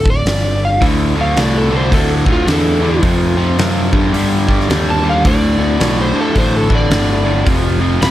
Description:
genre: blues rock power trio and southern rock.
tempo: 108 BPM.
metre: 4/4.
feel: swing 62% on 8ths.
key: unclear.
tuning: A4 = 440 Hz.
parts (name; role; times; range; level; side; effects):
overdriven slide guitar; melody; 0.0-8.1 s; F4 to B5; -19 LUFS; equal; none.
overdriven picked electric bass; bass; 0.0-8.1 s; D1 to G2; -17 LUFS; equal; none.
huge arena drum kit; drums; 0.1-8.1 s; hi-hat, kick drum, snare drum; -18 LUFS; equal; none.
cranked stack guitar; riff; 0.8-8.1 s; D2 to G3; -16 LUFS; equal; overdrive, spring reverb.
room: light reverb.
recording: none.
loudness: -12 LUFS.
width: side -13 dB against mid.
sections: 0.0-8.1 A section.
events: none.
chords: 0.0 G5; 0.8 D5; 3.0 F5; 3.9 G5; 5.2 D5; 7.5 F5.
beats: 0.26 | 0.82 1.37 1.93 2.48 | 3.03 3.59 4.14 4.69 | 5.25 5.80 6.35 6.91 | 7.46 8.01.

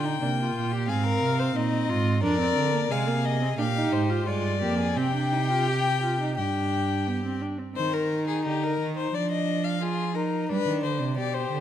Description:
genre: classical, baroque-style fugue for string quartet.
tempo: 88 BPM.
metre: 4/4.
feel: straight.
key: C minor.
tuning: A4 = 440 Hz.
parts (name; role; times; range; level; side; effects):
warm violin; melody; 0.0-11.6 s; G4 to G5; -30 LUFS; left 8 dB; none.
warm violin; second line; 0.0-11.6 s; D4 to C5; -30 LUFS; left 2 dB; none.
warm viola; accompaniment; 0.0-7.8 s; Ab3 to G4; -29 LUFS; right 2 dB; none.
rich cello; bass; 0.0-11.6 s; F2 to G3; -28 LUFS; right 4 dB; none.
room: moderate scoring stage reverb, RT60 1.8 s.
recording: none.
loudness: -24 LUFS.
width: side -10 dB against mid.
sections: 0.0-7.8 A section; 7.8-11.6 B section.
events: none.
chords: 0.0 Gm; 0.9 Fm/Ab; 2.2 Dm7b5/F; 5.0 Gsus4/C; 6.4 G5; 7.8 Cm/Eb; 9.1 Ddim/F; 10.5 G.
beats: 0.21 0.88 1.55 | 2.23 2.90 3.58 4.27 | 4.97 5.67 6.37 7.07 | 7.76 8.45 9.13 9.81 | 10.49 11.17.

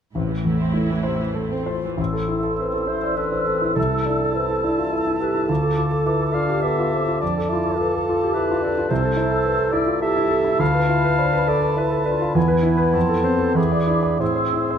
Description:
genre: classical, romantic movement for piano and orchestra.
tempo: 90-110 BPM.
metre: 3/4.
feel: rubato.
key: A minor.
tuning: A4 = 440 Hz.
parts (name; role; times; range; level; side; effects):
warm symphonic viola section; accompaniment; 0.1-2.0 s; C3 to E4; -29 LUFS; right 3 dB; none.
rich symphonic cello section; bass; 0.1-1.7 s; A2; -29 LUFS; right 3 dB; none.
warm concert grand piano; melody; 0.2-14.8 s; A1 to D5; -20 LUFS; equal; none.
warm clarinet; second line; 1.7-14.8 s; E4 to F5; -26 LUFS; left 2 dB; none.
mellow cor anglais; second line; 2.0-14.8 s; B4 to A5; -31 LUFS; right 4 dB; none.
mellow hollow large flute ensemble; second line; 2.0-14.8 s; B5 to E6; -27 LUFS; equal; none.
dark bassoon; accompaniment; 2.6-14.8 s; B3 to G4; -27 LUFS; right 2 dB; none.
room: moderate recital hall reverb, RT60 1.6 s.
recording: none.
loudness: -18 LUFS.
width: side -8 dB against mid.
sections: 0.1-2.0 A section; 2.0-14.8 B section.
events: none.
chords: 0.1 Am; 3.8 Am/C; 5.5 Dm; 7.2 Dm/F; 8.9 Am/C; 10.6 Bm7b5/D; 12.4 E; 13.6 E7; 14.2 Am.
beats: | 0.14 0.74 1.34 | 1.99 2.59 3.18 | 3.77 4.35 4.92 | 5.49 6.07 6.64 | 7.21 7.78 8.35 | 8.90 9.45 10.02 | 10.60 11.19 11.78 | 12.36 12.95 13.57 | 14.21.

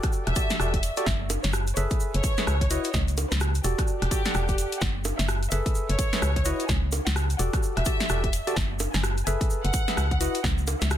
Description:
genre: UK garage, two-step garage.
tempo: 128 BPM.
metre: 4/4.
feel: swing 60% on 16ths.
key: F# minor.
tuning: A4 = 440 Hz.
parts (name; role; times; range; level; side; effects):
warm studio violin section; melody; 0.0-11.0 s; G4 to A5; -34 LUFS; equal; tape echo.
percussive organ stab; stabs; 0.0-10.4 s; E4 to F#5; -31 LUFS; equal; chorus, digital delay.
electronic kick drum; drums; 0.0-10.6 s; none; -27 LUFS; equal; none.
house drum kit; drums; 0.0-11.0 s; bongos, hi-hat, rim click, snare drum; -30 LUFS; equal; soft clipping on snare.
tube shaker; percussion; 0.0-11.0 s; none; -37 LUFS; right 3 dB; none.
organ-like FM bass; bass; 0.3-11.0 s; E1 to C#2; -26 LUFS; equal; none.
room: digital ambience.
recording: dense, heavily limited modern master.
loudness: -23 LUFS.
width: side -11 dB against mid.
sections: 0.0-11.0 A section.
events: none.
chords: 0.0 Em11; 1.1 F#m11; 2.7 C#m11; 3.6 Em11; 4.8 F#m11; 6.5 C#m11; 7.4 Em11; 8.6 F#m11; 10.2 C#m11.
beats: 0.13 0.60 | 1.06 1.53 2.00 2.47 | 2.94 3.41 3.88 4.35 | 4.82 5.28 5.75 6.22 | 6.69 7.16 7.63 8.10 | 8.56 9.03 9.50 9.97 | 10.44 10.91.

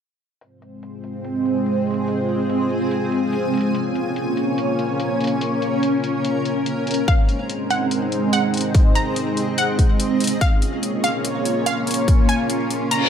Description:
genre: heavy wobble dubstep.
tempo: 144 BPM.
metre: 4/4.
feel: half-time.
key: F phrygian.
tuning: A4 = 440 Hz.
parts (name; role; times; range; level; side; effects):
lush unison pad; sustained chords; 0.8-13.1 s; Ab3 to Db5; -22 LUFS; equal; chorus, phaser, sidechain pumping.
electronic hi-hat; drums; 0.4-13.0 s; none; -30 LUFS; left 3 dB; low-pass filter on hats.
granular cloud pad; texture; 1.6-13.1 s; C4 to Ab5; -25 LUFS; right 1 dB; built-in reverb, sidechain pumping.
wide unison pluck; melody; 7.1-13.1 s; F5 to Bb5; -24 LUFS; moving between left 4 dB and right 5 dB; auto-pan, tape echo.
electronic kick drum; drums; 7.1-12.2 s; none; -16 LUFS; equal; none.
reverse cymbal; sound effects; 13.0-13.1 s; none; -18 LUFS; left 3 dB; none.
room: light reverb, digital ambience.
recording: none.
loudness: -18 LUFS.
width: side -8 dB against mid.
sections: 0.4-13.1 A section.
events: filter sweep on drum 0.4-13.1; filter sweep on analog synth pad 0.4-13.1; reverse cymbal 13.0.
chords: 0.4 Fm; 3.7 Bbm; 7.1 Ab; 10.4 Bbm.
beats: | 0.41 0.83 1.25 1.66 | 2.08 2.50 2.91 3.33 | 3.75 4.16 4.58 5.00 | 5.41 5.83 6.25 6.66 | 7.08 7.50 7.91 8.33 | 8.75 9.16 9.58 10.00 | 10.41 10.83 11.25 11.66 | 12.08 12.50 12.91.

